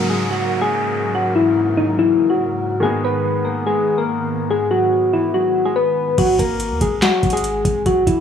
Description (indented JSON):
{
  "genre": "hip hop, trap",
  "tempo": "143 BPM",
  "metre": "4/4",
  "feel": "half-time",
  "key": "unclear",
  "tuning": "A4 = 440 Hz",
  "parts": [
    { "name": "soft electric-piano-like synth keys", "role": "melody", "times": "0.0-8.2 s", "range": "D#4 to B4", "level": "-17 LUFS", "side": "left 2 dB", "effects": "chorus, low-pass filter, tape echo" },
    { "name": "felt-muted upright piano", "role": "accompaniment", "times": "0.0-6.2 s", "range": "G#2 to G#4", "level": "-25 LUFS", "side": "left 1 dB", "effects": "low-pass filter" },
    { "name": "hollow soft pad", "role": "sustained chords", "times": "0.0-6.1 s", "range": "G#2 to A#4", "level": "-26 LUFS", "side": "equal", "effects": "ensemble chorus" },
    { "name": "downlifter", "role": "sound effects", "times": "0.0-2.8 s", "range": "none", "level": "-29 LUFS", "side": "equal", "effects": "none" },
    { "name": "warm 808-style bass", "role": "bass", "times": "6.2-8.2 s", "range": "G#1 to D#2", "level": "-23 LUFS", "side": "equal", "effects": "none" },
    { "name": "booming analog drum machine", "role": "drums", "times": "6.2-8.2 s", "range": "crash cymbal, handclaps, hi-hat, kick drum, snare drum", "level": "-21 LUFS", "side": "equal", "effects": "overdrive" }
  ],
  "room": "light reverb, digital ambience",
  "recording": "studio ambience",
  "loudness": "-16 LUFS",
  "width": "side -8 dB against mid",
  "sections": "0.0-6.2 A section; 6.2-8.2 B section",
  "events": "none",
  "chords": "0.0 F#/G#; 2.8 G#m; 6.2 F#/G#"
}